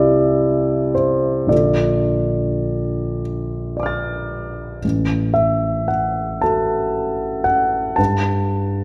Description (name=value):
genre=classical, impressionist solo piano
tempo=34-39 BPM (dotted quarters)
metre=6/8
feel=rubato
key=unclear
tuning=A4 = 444 Hz
part: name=warm concert grand piano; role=solo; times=0.0-8.8 s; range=A1 to A6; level=-19 LUFS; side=equal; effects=none
room=wet recital hall reverb, RT60 1.6 s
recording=none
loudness=-19 LUFS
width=mono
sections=0.0-8.8 A section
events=none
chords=0.0 Cadd9; 1.5 Bbmaj7; 4.8 F#m7/A; 8.0 Gsus2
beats=| 1.51 3.21 | 4.84 6.42 | 7.99